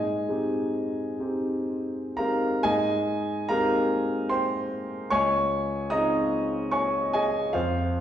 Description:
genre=classical, impressionist solo piano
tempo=60-76 BPM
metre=3/4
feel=rubato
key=Ab major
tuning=A4 = 440 Hz
part: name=warm concert grand piano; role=solo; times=0.0-8.0 s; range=Db2 to Eb6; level=-24 LUFS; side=equal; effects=none
room=wet recital hall reverb, RT60 1.4 s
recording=heard from further back in the room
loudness=-24 LUFS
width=side -10 dB against mid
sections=0.0-2.6 A section; 2.6-8.0 A section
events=none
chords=0.0 Abmaj7; 5.1 Dbmaj9

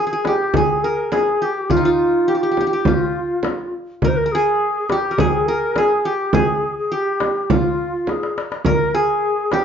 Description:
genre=Arabic maqam ensemble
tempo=104 BPM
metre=4/4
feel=straight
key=unclear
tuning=A4 = 441 Hz
part: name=qanun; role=melody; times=0.0-9.6 s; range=Eb4 to Bb4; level=-19 LUFS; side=right 1 dB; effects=none
part: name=bright reedy low ney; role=second line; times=0.0-9.6 s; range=F4 to C5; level=-22 LUFS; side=left 2 dB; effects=none
part: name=darbuka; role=percussion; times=0.2-9.6 s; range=none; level=-24 LUFS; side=left 2 dB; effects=none
part: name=frame drum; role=percussion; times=0.2-9.6 s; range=none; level=-22 LUFS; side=right 3 dB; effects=none
room=moderate large studio reverb, RT60 0.8 s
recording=band playing live in one room, nothing above 7.5 kHz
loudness=-16 LUFS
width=side -7 dB against mid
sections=0.0-9.6 A section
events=drum fill 8.1-8.7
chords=none

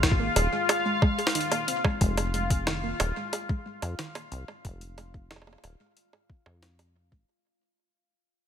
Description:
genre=IDM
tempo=91 BPM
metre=4/4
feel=straight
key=unclear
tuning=A4 = 440 Hz
part: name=warbly dusty pluck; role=arpeggios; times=0.0-7.2 s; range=Eb3 to Ab4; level=-33 LUFS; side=right 2 dB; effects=chorus, cassette tape, dub echo
part: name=deep acid bass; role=bass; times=0.0-7.2 s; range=Eb1 to F2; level=-31 LUFS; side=equal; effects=none
part: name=electronic kick drum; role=drums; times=0.0-7.3 s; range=none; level=-25 LUFS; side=equal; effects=overdrive
part: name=jungle sampler-style drum kit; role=drums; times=0.0-6.9 s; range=bongos, hi-hat, snare drum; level=-29 LUFS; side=right 1 dB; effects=digital delay
part: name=bubbling stepped-filter texture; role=texture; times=0.0-7.3 s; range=F4 to F5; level=-30 LUFS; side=left 3 dB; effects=chorus, built-in reverb, sidechain pumping
room=light reverb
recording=none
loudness=-24 LUFS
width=side -8 dB against mid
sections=0.0-7.3 A section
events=fade-out 0.0-7.3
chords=0.0 Fm7

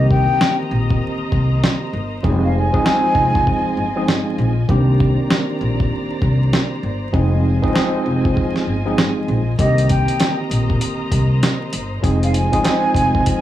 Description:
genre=hip hop, boom-bap hip-hop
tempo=98 BPM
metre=4/4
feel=swing 62% on 16ths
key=C minor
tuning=A4 = 439 Hz
part: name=breathy concert flute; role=melody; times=0.0-4.0, 9.6-13.4 s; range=Eb5 to Ab5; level=-20 LUFS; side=left 1 dB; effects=high-pass filter, low-pass filter, tape echo
part: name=tine electric piano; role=accompaniment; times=0.0-13.4 s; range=D3 to Ab4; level=-21 LUFS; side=right 1 dB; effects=overdrive, fast stereo tremolo, cassette tape, high-pass filter, low-pass filter
part: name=dark studio string section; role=sustained chords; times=0.0-13.4 s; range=Eb3 to Bb5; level=-30 LUFS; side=equal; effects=high-pass filter, low-pass filter
part: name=upright bass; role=bass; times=0.0-13.2 s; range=F1 to C2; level=-18 LUFS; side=equal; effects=none
part: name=dusty soul sampler-style drum kit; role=drums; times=0.1-13.4 s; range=hi-hat, kick drum, snare drum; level=-19 LUFS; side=equal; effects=none
room=light reverb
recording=vinyl crackle, small room reverb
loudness=-15 LUFS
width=side -12 dB against mid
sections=0.0-13.4 A section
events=break 0.0-9.6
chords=0.0 Cm9; 2.2 Fm7; 4.7 Cm9; 7.1 Fm7; 9.6 Cm9; 12.0 Fm7

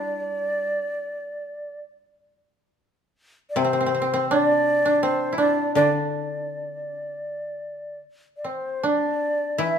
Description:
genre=japanese traditional, Japanese chamber music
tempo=74-87 BPM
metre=4/4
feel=rubato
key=unclear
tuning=A4 = 440 Hz
part: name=mellow shakuhachi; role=melody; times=0.0-9.8 s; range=C5 to E5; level=-25 LUFS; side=equal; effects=none
part: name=koto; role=second line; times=0.0-9.8 s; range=C4 to A4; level=-24 LUFS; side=right 2 dB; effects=none
part: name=koto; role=accompaniment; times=0.0-9.8 s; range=C3 to G3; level=-30 LUFS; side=left 8 dB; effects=none
room=moderate recital hall reverb, RT60 1.4 s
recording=minimal, uncompressed stereo recording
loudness=-21 LUFS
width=side -7 dB against mid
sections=0.0-8.8 A section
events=none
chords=none

